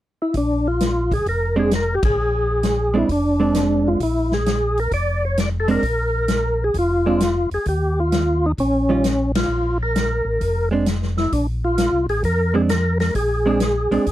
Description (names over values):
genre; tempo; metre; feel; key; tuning
soul jazz organ trio; 131 BPM; 4/4; swing 68% on 8ths; Bb mixolydian; A4 = 437 Hz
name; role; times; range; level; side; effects
percussive tonewheel organ; melody; 0.2-14.1 s; Db4 to D5; -20 LUFS; equal; slow rotary speaker, overdrive, chorus vibrato
mellow tonewheel organ; bass; 0.3-14.1 s; F1 to F2; -23 LUFS; equal; chorus vibrato, slow rotary speaker
swinging big-band drum kit; drums; 0.3-14.1 s; hi-hat, kick drum, ride cymbal, snare drum; -24 LUFS; left 1 dB; none
vintage hollow-body jazz guitar; accompaniment; 1.6-14.1 s; Eb3 to F4; -19 LUFS; right 4 dB; none
room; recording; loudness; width
little or no reverb; none; -17 LUFS; side -14 dB against mid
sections
0.3-14.1 A section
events
band accent 1.9, 9.3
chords
0.3 Bb9; 7.7 Eb9; 9.5 Bb7sus2